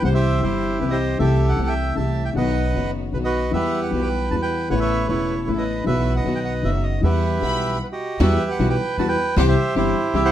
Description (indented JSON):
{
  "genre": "tango",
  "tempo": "155 BPM",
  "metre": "3/4",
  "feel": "rubato",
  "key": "E harmonic minor",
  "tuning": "A4 = 441 Hz",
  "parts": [
    { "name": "bandoneon", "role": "melody", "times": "0.0-10.3 s", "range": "E4 to A5", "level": "-23 LUFS", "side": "right 3 dB", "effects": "none" },
    { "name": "dark upright piano", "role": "accompaniment", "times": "0.0-10.3 s", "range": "E1 to F#5", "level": "-23 LUFS", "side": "left 4 dB", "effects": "none" },
    { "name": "rich symphonic string section", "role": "stabs", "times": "0.0-10.3 s", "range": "G3 to F#5", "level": "-34 LUFS", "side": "right 1 dB", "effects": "none" },
    { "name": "upright bass", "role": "bass", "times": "0.0-10.3 s", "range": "E1 to E2", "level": "-23 LUFS", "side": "right 1 dB", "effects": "none" },
    { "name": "bright studio violin section", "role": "second line", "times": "7.4-7.8 s", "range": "B5", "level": "-30 LUFS", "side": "left 4 dB", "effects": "none" }
  ],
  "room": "light reverb",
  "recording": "close, detailed microphones",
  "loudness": "-18 LUFS",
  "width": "side -11 dB against mid",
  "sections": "0.0-8.2 A section; 8.2-10.3 B section",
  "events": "stop 7.8-8.2",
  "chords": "0.0 C; 1.2 Am7/C; 2.4 B; 3.5 Emadd9; 4.7 Aadd9; 5.9 Bsus4; 6.2 B; 7.0 Emadd9; 9.4 C",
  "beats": "| 0.04 0.42 0.81 | 1.20 1.58 1.97 | 2.35 2.74 3.13 | 3.53 3.92 4.31 | 4.70 5.09 5.47 | 5.86 6.25 6.63 | 7.02 7.41 7.81 | 8.20 8.59 8.98 | 9.37 9.75 10.14"
}